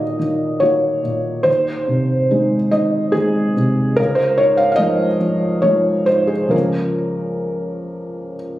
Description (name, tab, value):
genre	neoclassical minimalist piano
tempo	65-74 BPM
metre	3/4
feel	rubato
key	unclear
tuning	A4 = 440 Hz
part	felt-muted upright piano	solo	0.0-8.6 s	Db2 to F5	-15 LUFS	equal	none
room	light reverb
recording	recorded on a phone in the room, studio reverb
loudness	-15 LUFS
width	side -14 dB against mid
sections	0.0-8.6 A section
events	none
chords	0.0 Ebm; 1.5 Ab/Eb; 4.0 Dbadd9; 6.5 Bbm/Db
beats	0.63 | 1.47 2.32 3.15 | 3.98 4.80 5.64 | 6.53 7.44 8.35